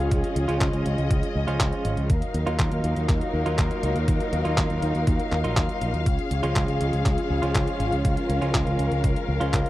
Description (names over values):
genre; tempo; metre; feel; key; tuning
italo disco; 121 BPM; 4/4; straight; Db major; A4 = 440 Hz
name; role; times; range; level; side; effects
warm studio string section; sustained chords; 0.0-9.7 s; Gb3 to F5; -28 LUFS; left 2 dB; none
direct-recorded clean electric guitar; stabs; 0.0-9.7 s; F3 to F4; -31 LUFS; right 3 dB; none
picked electric bass with an envelope filter; bass; 0.0-9.6 s; Ab1 to Eb2; -26 LUFS; equal; none
detuned 8-bit digital drum machine; drums; 0.1-9.7 s; handclaps, hi-hat; -30 LUFS; equal; small room ambience
electronic kick drum; drums; 0.1-9.6 s; none; -25 LUFS; equal; small room ambience
room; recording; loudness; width
little or no reverb; dry, close 1970s-style studio recording; -21 LUFS; side -16 dB against mid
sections
0.0-9.7 A section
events
none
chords
0.0 Db; 2.1 Ebmadd9; 6.1 Db